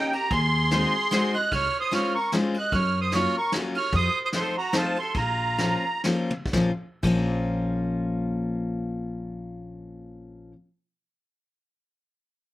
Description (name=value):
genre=musette waltz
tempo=119-152 BPM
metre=3/4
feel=swing 55% on 8ths, rubato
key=Bb minor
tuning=A4 = 440 Hz
part: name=musette accordion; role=melody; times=0.0-6.0 s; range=G5 to Gb6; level=-26 LUFS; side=right 2 dB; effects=none
part: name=warm harmonica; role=second line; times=0.0-6.0 s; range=Eb4 to Eb5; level=-29 LUFS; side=right 2 dB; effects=none
part: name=picked steel-string acoustic guitar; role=accompaniment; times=0.0-10.6 s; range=F3 to G4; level=-27 LUFS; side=left 2 dB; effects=none
part: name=vintage brush drum kit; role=drums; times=0.1-7.2 s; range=crash cymbal, kick drum, ride cymbal, snare drum, toms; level=-32 LUFS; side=equal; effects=none
part: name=upright bass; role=bass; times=0.3-10.5 s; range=Bb1 to Gb2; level=-28 LUFS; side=equal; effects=none
room=little or no reverb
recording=none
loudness=-22 LUFS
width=side -15 dB against mid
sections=0.0-6.5 A section; 6.5-9.5 B section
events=slowing down 3.9-6.5; drum fill 6.3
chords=0.3 Ab7/Eb; 1.5 Dbmaj7; 2.7 Gbmaj7; 3.9 F7; 5.2 Bbm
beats=| 0.31 0.71 1.12 | 1.52 1.93 2.33 | 2.73 3.13 3.53 | 3.93 4.33 4.73 | 5.15 5.59 6.05 | 6.54 7.04 7.53 | 8.02 8.51 9.01